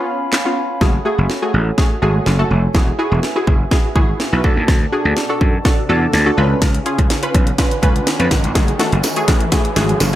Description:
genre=dance-pop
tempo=124 BPM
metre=4/4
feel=straight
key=F# minor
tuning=A4 = 440 Hz
part: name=punchy chord stab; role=accompaniment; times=0.0-10.2 s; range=A3 to B4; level=-20 LUFS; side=equal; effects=chorus
part: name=glass harmonica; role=sustained chords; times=0.0-10.2 s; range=C#4 to B5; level=-26 LUFS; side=equal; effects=sidechain pumping
part: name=house drum kit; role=drums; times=0.3-10.2 s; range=handclaps, hi-hat, kick drum, snare drum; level=-16 LUFS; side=equal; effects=none
part: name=gritty slap bass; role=bass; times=0.8-10.2 s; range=E1 to F#2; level=-17 LUFS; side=equal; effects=overdrive, sidechain pumping
part: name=riser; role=sound effects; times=3.0-10.2 s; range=none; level=-28 LUFS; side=equal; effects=none
part: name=tambourine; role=percussion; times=9.0-10.1 s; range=none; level=-25 LUFS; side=right 5 dB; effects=none
room=light reverb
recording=bright 1980s-style digital production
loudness=-13 LUFS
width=side -13 dB against mid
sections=0.8-10.2 A section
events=break 0.0-0.8; build-up 0.8-10.2; drum fill 0.8-10.2; riser 3.0-10.2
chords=0.0 C#7; 0.8 F#madd9; 2.7 Eadd9; 4.4 D; 6.4 C#7; 8.6 F#madd9

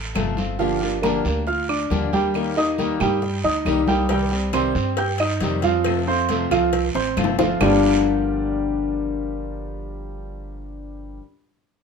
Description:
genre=latin, Cuban son and guajira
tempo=137 BPM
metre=4/4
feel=straight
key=G minor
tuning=A4 = 440 Hz
part: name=warm grand piano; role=arpeggios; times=0.0-11.2 s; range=F3 to G6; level=-22 LUFS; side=right 4 dB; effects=none
part: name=upright bass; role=bass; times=0.0-11.2 s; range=G1 to G2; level=-28 LUFS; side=right 1 dB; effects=none
part: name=fingerpicked old ladder-braced acoustic guitar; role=accompaniment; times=0.1-11.2 s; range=G2 to G4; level=-24 LUFS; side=left 6 dB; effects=none
part: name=claves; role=percussion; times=0.2-7.7 s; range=none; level=-32 LUFS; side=right 6 dB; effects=none
part: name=congas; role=percussion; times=0.2-7.7 s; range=none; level=-29 LUFS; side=left 2 dB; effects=none
part: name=cowbell and bongos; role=percussion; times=0.2-0.4, 4.1-7.7 s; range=none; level=-28 LUFS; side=left 6 dB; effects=none
part: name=guiro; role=percussion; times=0.2-7.7 s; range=none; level=-34 LUFS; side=right 4 dB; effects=none
room=light reverb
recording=minimal, uncompressed stereo recording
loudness=-19 LUFS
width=side -6 dB against mid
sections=0.6-7.6 A section; 7.6-11.1 B section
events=drum fill 7.0-7.6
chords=0.0 F; 0.6 Gm7; 2.3 Eb; 4.1 Cm; 5.9 F; 7.6 Gm7

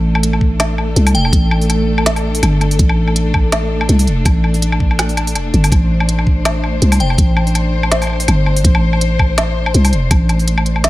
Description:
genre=half-time drum and bass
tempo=164 BPM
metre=4/4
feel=swing 55% on 16ths, half-time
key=A minor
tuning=A4 = 444 Hz
part: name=warm studio string section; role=sustained chords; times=0.0-10.9 s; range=A3 to C5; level=-21 LUFS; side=left 1 dB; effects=sidechain pumping
part: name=growling 808-style bass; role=bass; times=0.0-10.9 s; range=E1 to C2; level=-14 LUFS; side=equal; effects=none
part: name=organic electronic drum kit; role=drums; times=0.2-10.9 s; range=hi-hat, snare drum, woodblock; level=-18 LUFS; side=equal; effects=studio reverb
part: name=electronic kick drum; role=drums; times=0.4-10.2 s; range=none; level=-13 LUFS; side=equal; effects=studio reverb
part: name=glassy synth bell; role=melody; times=1.1-1.7, 7.0-7.5 s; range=G5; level=-24 LUFS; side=left 2 dB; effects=chorus, phaser, digital delay
room=little or no reverb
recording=none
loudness=-12 LUFS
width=side -17 dB against mid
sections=0.0-10.9 A section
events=none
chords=0.0 A5

